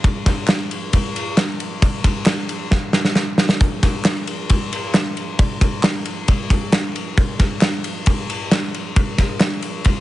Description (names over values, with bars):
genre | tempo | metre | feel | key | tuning
indie pop | 134 BPM | 4/4 | straight | none | none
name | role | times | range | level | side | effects
loose indie drum kit | drums | 0.0-10.0 s | hi-hat, kick drum, ride cymbal, snare drum | -17 LUFS | equal | none
group handclap | percussion | 0.5-9.5 s | none | -30 LUFS | equal | none
room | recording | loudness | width
little or no reverb | heavily compressed radio sound, nothing above 10.5 kHz | -17 LUFS | side -16 dB against mid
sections
0.0-10.0 A section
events
drum fill 2.7-3.6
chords
none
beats
| 0.04 0.49 0.93 1.38 | 1.82 2.27 2.71 3.16 | 3.61 4.05 4.50 4.95 | 5.39 5.84 6.28 6.73 | 7.18 7.62 8.07 8.52 | 8.96 9.41 9.85